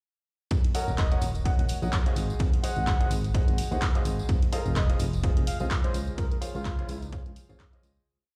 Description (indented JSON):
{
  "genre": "piano house",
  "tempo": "127 BPM",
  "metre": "4/4",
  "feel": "swing 57% on 16ths",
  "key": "unclear",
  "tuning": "A4 = 439 Hz",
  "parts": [
    { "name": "solid FM bass", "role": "bass", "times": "0.5-8.0 s", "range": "Eb1 to Eb2", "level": "-32 LUFS", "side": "equal", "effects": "sidechain pumping" },
    { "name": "electronic kick drum", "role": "drums", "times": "0.5-7.7 s", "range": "none", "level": "-28 LUFS", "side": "equal", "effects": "studio reverb" },
    { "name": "punchy analog drum machine", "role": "drums", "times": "0.5-7.9 s", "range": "handclaps, hi-hat", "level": "-39 LUFS", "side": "equal", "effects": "studio reverb" },
    { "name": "tambourine", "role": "percussion", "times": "0.5-8.0 s", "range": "none", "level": "-48 LUFS", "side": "equal", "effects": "none" },
    { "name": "trumpet with bucket mute", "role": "melody", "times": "0.7-7.2 s", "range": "F4 to Gb5", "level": "-40 LUFS", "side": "equal", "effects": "dub echo" },
    { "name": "clear upright piano", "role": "riff", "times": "0.7-8.1 s", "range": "F4 to Gb5", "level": "-38 LUFS", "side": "equal", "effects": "sidechain pumping, dub echo" }
  ],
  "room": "small room ambience",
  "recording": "played on a big sound system in a bare room, large studio reverb",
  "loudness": "-27 LUFS",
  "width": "mono",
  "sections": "0.5-8.1 groove",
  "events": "fade-out 5.5-8.1",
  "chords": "0.5 Ebm7; 2.2 Ab7; 4.3 Fm7; 5.9 Dbmaj7"
}